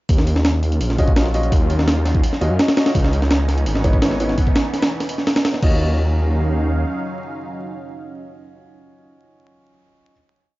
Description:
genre	drum and bass, jungle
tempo	168 BPM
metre	4/4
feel	straight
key	Eb minor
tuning	A4 = 440 Hz
part	lush unison pad	sustained chords	0.6-9.4 s	Fb3 to F5	-28 LUFS	right 1 dB	chorus, phaser
part	detuned saw bass	bass	0.1-6.8 s	Ab1 to Gb2	-18 LUFS	equal	none
part	breakbeat sampler-style drum kit	drums	0.1-5.7 s	crash cymbal, hi-hat, kick drum, snare drum	-18 LUFS	equal	studio reverb
part	dark baby grand piano	stabs	1.0-10.1 s	Cb4 to Eb5	-27 LUFS	equal	vintage 12-bit sampler grit, dub echo
room	little or no reverb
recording	dry, gritty hardware recording, vinyl crackle, nothing above 7.5 kHz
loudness	-16 LUFS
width	side -19 dB against mid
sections	0.1-5.8 drop; 5.8-8.7 final hit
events	drop 0.1-5.8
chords	0.1 Ebm9; 2.9 Dbm9; 5.6 Ebm9

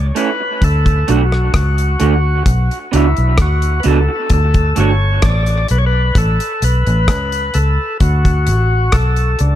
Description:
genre	dub reggae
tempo	65 BPM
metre	4/4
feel	straight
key	D major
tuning	A4 = 440 Hz
part	vintage muted fingered electric bass	bass	0.0-9.6 s	G1 to D2	-14 LUFS	equal	none
part	overdriven tonewheel organ	melody	0.2-9.6 s	D4 to D5	-19 LUFS	left 1 dB	slow rotary speaker, dub echo
part	electric guitar through a small old amp	accompaniment	0.2-4.9 s	A3 to F#4	-20 LUFS	right 9 dB	dub echo
part	damped 70s drum kit	drums	0.2-9.6 s	hi-hat, kick drum, rim click	-17 LUFS	equal	none
room	small room ambience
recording	echo-heavy mix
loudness	-12 LUFS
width	side -12 dB against mid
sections	0.0-9.6 A section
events	none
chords	0.0 A; 0.6 D; 2.5 Bm; 4.3 D5; 6.2 A; 8.0 D

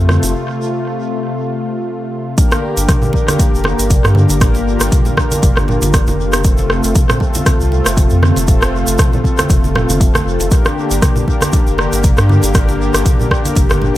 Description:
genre	afro house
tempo	118 BPM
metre	4/4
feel	swing 56% on 16ths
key	G minor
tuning	A4 = 442 Hz
part	warm analog pad	sustained chords	0.0-14.0 s	C3 to G4	-21 LUFS	equal	chorus, sidechain pumping
part	mellow synth brass	stabs	0.0-14.0 s	A3 to Bb4	-20 LUFS	left 3 dB	chorus, sidechain pumping, tape echo
part	warm sub bass	bass	0.0-13.9 s	F1 to G2	-16 LUFS	equal	sidechain pumping
part	deep house drum kit	drums	0.1-13.8 s	hi-hat, rim click, toms	-19 LUFS	equal	studio ambience, tape echo
part	congas	percussion	0.1-13.9 s	none	-21 LUFS	right 2 dB	none
part	egg shaker	percussion	0.2-13.8 s	none	-26 LUFS	right 3 dB	tape echo
part	electronic kick drum	drums	2.4-13.7 s	none	-13 LUFS	equal	studio ambience
room	light reverb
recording	echo-heavy mix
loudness	-11 LUFS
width	side -14 dB against mid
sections	0.0-2.4 A section; 2.4-14.0 B section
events	break 0.3-2.4; drop 2.4-14.0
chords	0.0 F; 2.4 Gm; 6.4 F; 10.5 Gm

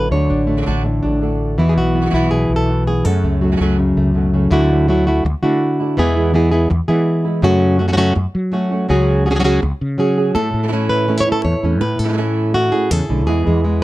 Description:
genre	flamenco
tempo	164 BPM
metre	4/4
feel	straight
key	unclear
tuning	A4 = 440 Hz
part	flamenco guitar	melody	0.0-13.8 s	F#2 to C#5	-16 LUFS	equal	none
part	flamenco guitar	stabs	0.0-13.8 s	B2 to G#4	-23 LUFS	right 6 dB	none
part	mellow fretless electric bass	bass	0.0-13.8 s	A1 to F#3	-18 LUFS	equal	none
room	light reverb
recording	dark, warm production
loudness	-14 LUFS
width	side -17 dB against mid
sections	0.0-4.5 A section; 4.5-10.4 B section; 10.4-13.8 C section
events	none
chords	0.0 D; 1.6 Esus2; 3.1 F#m; 4.5 Dadd9; 6.0 E; 7.4 F#m; 8.9 C#sus4; 10.4 A; 13.3 E

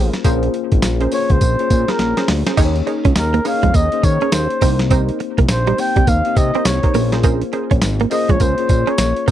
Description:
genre	R&B, new jack swing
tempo	103 BPM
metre	4/4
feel	swing 62% on 16ths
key	Bb dorian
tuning	A4 = 439 Hz
part	breathy flugelhorn	melody	0.0-9.3 s	Bb4 to G5	-20 LUFS	equal	none
part	bell-like tine electric piano	accompaniment	0.0-9.3 s	Bb3 to Eb5	-23 LUFS	left 17 dB	none
part	funky polysynth comp	stabs	0.0-9.3 s	Db4 to Db5	-25 LUFS	right 6 dB	chorus
part	fat analog bass	bass	0.0-9.3 s	Ab1 to Eb3	-19 LUFS	equal	none
part	boom bap sampler-style drum kit	drums	0.1-9.3 s	crash cymbal, hi-hat, kick drum, snare drum, tambourine	-17 LUFS	equal	none
part	direct-recorded clean electric guitar	riff	2.6-9.3 s	G3 to Eb4	-20 LUFS	right 8 dB	analog chorus
room	little or no reverb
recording	dry, close 1970s-style studio recording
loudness	-14 LUFS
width	side -11 dB against mid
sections	0.0-9.3 A section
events	drum fill 2.0-2.6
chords	0.0 Bbm9; 2.6 Eb7sus4; 4.6 Cm7; 6.9 Bbm9

